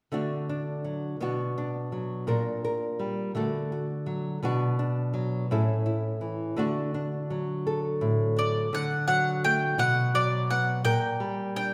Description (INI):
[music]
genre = folk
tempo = 56 BPM (dotted quarters)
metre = 6/8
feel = straight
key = D major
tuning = A4 = 440 Hz
[part]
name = nylon-string guitar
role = accompaniment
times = 0.1-11.7 s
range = A2 to Bb4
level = -29 LUFS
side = equal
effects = none
[part]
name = bowl-back mandolin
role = melody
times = 8.4-11.7 s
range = D5 to G5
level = -28 LUFS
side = equal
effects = none
[sound]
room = wet recital hall reverb, RT60 1.6 s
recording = recorded in a church or concert hall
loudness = -28 LUFS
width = mono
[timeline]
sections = 0.1-8.7 A section; 8.7-11.7 B section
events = none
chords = 0.1 D; 1.2 Bm; 2.3 Gm/Bb; 3.3 D; 4.4 Bm; 5.5 A; 6.6 D; 9.8 B5; 10.9 Gm/Bb